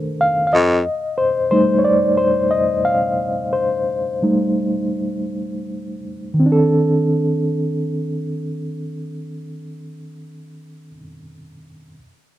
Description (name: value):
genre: R&B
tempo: 78-92 BPM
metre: 4/4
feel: swing 59% on 16ths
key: unclear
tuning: A4 = 440 Hz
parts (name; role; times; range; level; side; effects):
- reed electric piano; accompaniment; 0.0-12.0 s; Eb3 to F5; -17 LUFS; equal; fast tremolo
- bright baritone saxophone; bass; 0.5-0.8 s; F2; -16 LUFS; right 1 dB; none
room: light reverb, small room reverb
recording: dry, close 1970s-style studio recording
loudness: -16 LUFS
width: side -13 dB against mid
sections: 0.0-6.4 A section; 6.4-9.5 B section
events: reed electric piano solo 0.0-6.4; slowing down 0.9-6.4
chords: 0.0 Cm69; 0.5 F9; 6.4 Cm69